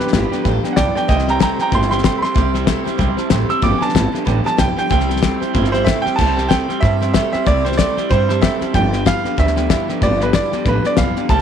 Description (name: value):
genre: rockabilly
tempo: 188 BPM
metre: 4/4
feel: swing 58% on 8ths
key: C major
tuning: A4 = 440 Hz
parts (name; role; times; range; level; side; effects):
- bright upright piano; melody; 0.0-11.4 s; G4 to E6; -20 LUFS; right 3 dB; none
- picked steel-string acoustic guitar; accompaniment; 0.0-11.4 s; G2 to G4; -24 LUFS; left 12 dB; none
- warm upright piano; accompaniment; 0.0-11.4 s; B4 to A5; -29 LUFS; right 14 dB; none
- electric guitar through a small old amp; riff; 0.0-11.4 s; G2 to A3; -24 LUFS; right 14 dB; none
- upright bass; bass; 0.0-11.4 s; G1 to G2; -19 LUFS; right 1 dB; none
- cloth-damped thuddy drum kit; drums; 0.0-11.4 s; crash cymbal, hi-hat, kick drum, snare drum; -19 LUFS; left 4 dB; none
room: light reverb, small room reverb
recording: 1960s-style stereo with parts hard left and right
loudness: -14 LUFS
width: side -8 dB against mid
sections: 0.0-6.2 A section; 6.2-11.4 B section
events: upright piano solo 0.0-6.2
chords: 0.0 G7; 1.1 C; 3.6 G7; 4.9 C; 8.7 G7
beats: 0.13 0.45 0.77 | 1.09 1.41 1.72 2.04 | 2.36 2.68 3.00 3.32 | 3.64 3.96 4.27 4.59 | 4.91 5.23 5.55 5.87 | 6.19 6.50 6.82 7.14 | 7.46 7.78 8.10 8.42 | 8.74 9.06 9.38 9.70 | 10.02 10.34 10.65 10.97 | 11.29